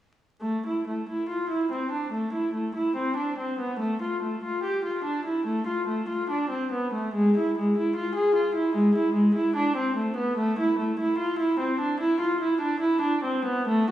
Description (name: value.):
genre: classical, baroque-style suite movement for unaccompanied viola.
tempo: 72 BPM.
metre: 4/4.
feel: uneven beats, rubato.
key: A minor.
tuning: A4 = 440 Hz.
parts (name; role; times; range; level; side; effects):
warm viola; solo; 0.4-13.9 s; G#3 to G#4; -24 LUFS; equal; none.
room: wet recital hall reverb, RT60 1.4 s.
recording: heard from further back in the room, vinyl crackle, small room ambience.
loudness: -24 LUFS.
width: side -12 dB against mid.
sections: 0.4-13.9 A section.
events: none.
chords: none.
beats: | 0.41 1.29 2.12 2.96 | 3.79 4.62 5.45 6.28 | 7.13 7.95 8.75 9.56 | 10.38 11.19 12.00 12.81 | 13.67.